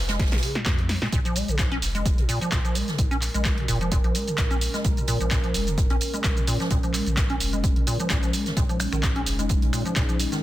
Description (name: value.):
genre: acid house.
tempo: 129 BPM.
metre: 4/4.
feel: swing 54% on 16ths.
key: Bb minor.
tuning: A4 = 440 Hz.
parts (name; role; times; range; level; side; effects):
warm sub bass; bass; 0.0-10.3 s; F1 to F2; -29 LUFS; equal; sidechain pumping.
acid bass, square; riff; 0.1-10.4 s; Ab2 to Db4; -28 LUFS; equal; wide subtle chorus, dub echo.
punchy analog drum machine; drums; 0.1-10.4 s; finger snaps, handclaps, hi-hat, shaker, snare drum; -29 LUFS; right 1 dB; none.
swinging big-band drum kit; drums; 0.1-10.4 s; hi-hat, snare drum; -36 LUFS; right 2 dB; sidechain pumping on hats, high-pass filter on hats, high-pass filter on snare, high-pass filter on room.
electronic kick drum; drums; 0.2-10.1 s; none; -25 LUFS; equal; none.
dark analog pad; sustained chords; 2.3-10.4 s; Ab3 to Bb4; -32 LUFS; equal; chorus, phaser, sidechain pumping.
room: little or no reverb.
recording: dense, heavily limited modern master.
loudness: -21 LUFS.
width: side -14 dB against mid.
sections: 0.0-10.4 A section.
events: filter sweep on acid bass 0.0-10.4; drum fill 0.2-1.1.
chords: 0.0 Bbm7.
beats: 0.20 0.66 | 1.12 1.59 2.06 2.52 | 2.99 3.45 3.92 4.38 | 4.85 5.31 5.78 6.24 | 6.71 7.17 7.64 8.10 | 8.57 9.03 9.50 9.96 | 10.43.